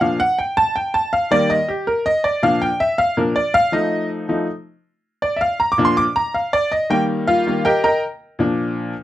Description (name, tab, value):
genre	latin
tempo	161 BPM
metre	4/4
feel	straight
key	Bb major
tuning	A4 = 440 Hz
part	bright upright piano	solo	0.0-8.9 s	Bb2 to D6	-16 LUFS	equal	none
room	light reverb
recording	dry, close 1970s-style studio recording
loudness	-16 LUFS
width	side -13 dB against mid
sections	0.0-9.0 A section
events	upright piano solo 0.0-9.0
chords	0.0 Bb; 0.8 Eb; 2.2 Bb; 3.7 F7; 5.2 Bb; 6.7 Eb; 8.2 Bb